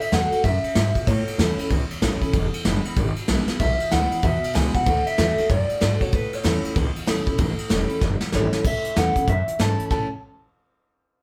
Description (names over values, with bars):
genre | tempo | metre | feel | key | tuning
rockabilly | 190 BPM | 4/4 | swing 62% on 8ths | A major | A4 = 440 Hz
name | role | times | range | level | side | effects
electric guitar through a small old amp | melody | 0.0-10.1 s | B4 to A5 | -28 LUFS | equal | none
picked steel-string acoustic guitar | accompaniment | 0.0-10.1 s | E2 to F#4 | -29 LUFS | equal | none
upright bass | bass | 0.0-10.1 s | E1 to A2 | -27 LUFS | equal | none
soft brush drum kit | drums | 0.0-10.0 s | crash cymbal, hi-hat, kick drum, ride cymbal, snare drum | -27 LUFS | equal | none
room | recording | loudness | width
moderate studio reverb, RT60 0.7 s | band playing live in one room | -22 LUFS | mono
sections
0.0-8.6 A section; 8.6-9.9 B section; 9.9-11.2 C section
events
drum fill 3.4, 8.0-8.6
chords
0.0 D; 1.1 A; 2.3 E; 4.9 D; 6.1 A